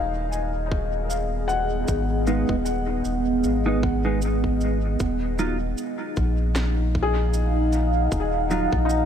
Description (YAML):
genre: ambient dub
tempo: 77 BPM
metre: 4/4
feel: swing 56% on 16ths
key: G# dorian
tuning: A4 = 440 Hz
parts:
  - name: deep dark ambient pad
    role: sustained chords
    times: 0.0-9.1 s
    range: B3 to A#5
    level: -26 LUFS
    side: equal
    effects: chorus, built-in reverb
  - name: felt-muted upright piano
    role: arpeggios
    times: 0.0-9.1 s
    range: D#4 to G#5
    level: -31 LUFS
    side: left 5 dB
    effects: dub echo
  - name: warm sub bass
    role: bass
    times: 0.0-9.1 s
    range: D#1 to A#1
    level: -25 LUFS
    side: equal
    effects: tube saturation
  - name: electronic shaker and snare drum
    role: drums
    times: 0.3-9.1 s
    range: none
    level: -35 LUFS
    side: right 1 dB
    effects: dub echo
  - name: electronic kick drum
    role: drums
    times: 0.7-8.9 s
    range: none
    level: -28 LUFS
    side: equal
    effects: none
  - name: mellow electric guitar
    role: stabs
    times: 2.3-8.8 s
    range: F#3 to E#4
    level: -30 LUFS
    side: right 2 dB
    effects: lush chorus, low-pass filter, dub echo
room: light reverb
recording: none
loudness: -21 LUFS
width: side -8 dB against mid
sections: 0.0-9.1 A section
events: none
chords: 0.0 G#m; 5.0 D#madd9